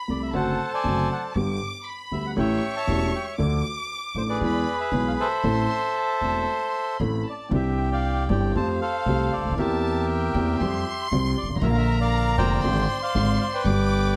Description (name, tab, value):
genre	tango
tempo	118 BPM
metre	4/4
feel	rubato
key	C major from 7.5 s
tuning	A4 = 440 Hz
part	warm chamber violin section	second line	0.0-14.2 s	F5 to D6	-36 LUFS	equal	none
part	bandoneon	melody	0.1-14.2 s	G4 to A5	-29 LUFS	equal	none
part	dark grand piano	accompaniment	0.1-14.2 s	E1 to A4	-28 LUFS	equal	none
part	upright bass	bass	0.1-14.2 s	E1 to F2	-29 LUFS	equal	none
room	moderate studio reverb, RT60 0.6 s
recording	none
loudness	-24 LUFS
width	mono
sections	0.0-7.5 A section; 7.5-14.2 B section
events	none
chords	0.3 D7/F#; 1.4 G; 2.4 A7; 3.4 Dm; 4.4 E; 5.4 Am; 7.5 Cadd9; 8.6 Fadd9; 9.6 C7/E; 10.6 Fsus2; 11.6 Bb; 12.6 Fm6/Ab; 13.7 G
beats	0.34 0.85 | 1.36 1.87 2.38 2.89 | 3.39 3.90 4.41 4.92 | 5.44 5.95 6.47 7.00 | 7.52 8.04 8.55 9.07 | 9.58 10.09 10.60 11.11 | 11.62 12.13 12.64 13.15 | 13.66